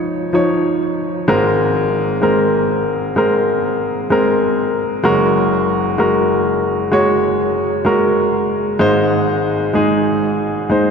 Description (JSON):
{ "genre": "pop", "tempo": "64 BPM", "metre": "4/4", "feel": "straight", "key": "unclear", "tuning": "A4 = 441 Hz", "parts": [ { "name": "clear baby grand piano", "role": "solo", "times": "0.0-10.9 s", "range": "Gb1 to Db5", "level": "-14 LUFS", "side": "equal", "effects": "ping-pong delay" } ], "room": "wet cathedral reverb, RT60 5.6 s", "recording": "dreamy mix soaked in reverb", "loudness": "-14 LUFS", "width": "side -6 dB against mid", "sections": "0.0-10.9 A section", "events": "none", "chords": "0.0 Dbadd9; 1.3 Abadd9; 5.0 Gbadd9; 8.8 Ab", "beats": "0.33 | 1.27 2.22 3.16 4.10 | 5.04 5.98 6.92 7.86 | 8.80 9.74 10.70" }